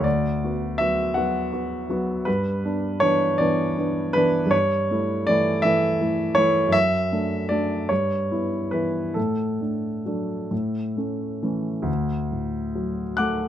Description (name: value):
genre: classical, romantic nocturne for solo piano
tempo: 43-56 BPM (dotted quarters)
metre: 6/8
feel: rubato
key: D major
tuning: A4 = 440 Hz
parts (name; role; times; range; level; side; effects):
- dark grand piano; solo; 0.0-13.5 s; D2 to F#6; -21 LUFS; equal; none
room: little or no reverb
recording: close, detailed microphones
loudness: -21 LUFS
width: side -10 dB against mid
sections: 0.0-11.9 A section; 11.9-13.5 B section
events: none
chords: 0.1 Bm/D; 2.3 Em7/G; 4.5 A7/G; 6.7 D/F#; 7.9 Em/G; 9.2 D/A; 10.5 A; 11.9 D